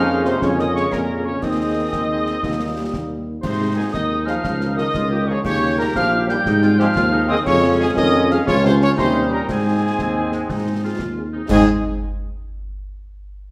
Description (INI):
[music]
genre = military-style march for wind band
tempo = 119 BPM (dotted quarters)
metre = 6/8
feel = straight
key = Ab major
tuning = A4 = 440 Hz
[part]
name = dark trumpet section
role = melody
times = 0.0-11.6 s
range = Ab4 to G5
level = -27 LUFS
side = equal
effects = none
[part]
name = mellow euphonium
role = second line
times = 0.0-11.6 s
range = Ab2 to Ab3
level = -28 LUFS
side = equal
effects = none
[part]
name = piccolo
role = second line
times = 0.0-11.7 s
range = Ab5 to G6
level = -29 LUFS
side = equal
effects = none
[part]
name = warm woodwind section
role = second line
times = 0.0-11.6 s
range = Ab3 to Eb5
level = -31 LUFS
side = equal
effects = none
[part]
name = dark French horn section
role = accompaniment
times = 0.0-11.6 s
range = Bb3 to Bb4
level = -30 LUFS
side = equal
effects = none
[part]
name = clear trombone section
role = sustained chords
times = 0.0-11.6 s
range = Eb3 to Db4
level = -30 LUFS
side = equal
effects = none
[part]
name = mellow tuba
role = bass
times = 0.0-11.6 s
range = Bb1 to Ab2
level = -22 LUFS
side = equal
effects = none
[part]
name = concert snare drum, concert bass drum and clash cymbals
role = drums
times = 0.3-11.7 s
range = none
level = -32 LUFS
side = equal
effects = none
[sound]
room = wet large studio reverb, RT60 1.2 s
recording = none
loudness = -19 LUFS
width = mono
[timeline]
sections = 0.0-11.5 A section; 11.5-12.5 B section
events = none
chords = 0.0 Bbm7/F; 1.4 Ab/Eb; 2.4 Eb; 3.4 Ab; 4.4 Bbm/Db; 5.5 Eb7; 6.5 Ab; 7.5 Db/F; 8.5 Db; 9.0 Eb7; 9.5 Ab